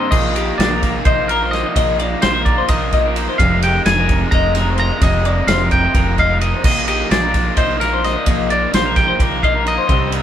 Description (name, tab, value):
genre	math rock and midwest emo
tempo	258 BPM (eighths)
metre	7/8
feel	straight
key	unclear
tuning	A4 = 440 Hz
part	twangy electric guitar	melody	0.0-10.2 s	Bb4 to Bb5	-19 LUFS	equal	none
part	twangy electric guitar	accompaniment	0.0-1.8 s	none	barely audible	none	none
part	twelve-string electric guitar	arpeggios	0.0-10.2 s	G4 to Eb5	-22 LUFS	left 5 dB	none
part	raw garage guitar	riff	0.0-10.2 s	F2 to F4	-22 LUFS	right 1 dB	overdrive
part	growling fingered electric bass	bass	0.1-10.2 s	F1 to C2	-20 LUFS	equal	overdrive
part	loose indie drum kit	drums	0.1-10.2 s	crash cymbal, kick drum, ride cymbal, snare drum	-18 LUFS	right 1 dB	none
room	moderate studio reverb, RT60 0.8 s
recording	band playing live in one room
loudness	-13 LUFS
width	side -10 dB against mid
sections	0.1-10.2 A section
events	none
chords	0.1 Bb7sus4; 3.4 Fm11; 6.6 Bb7sus4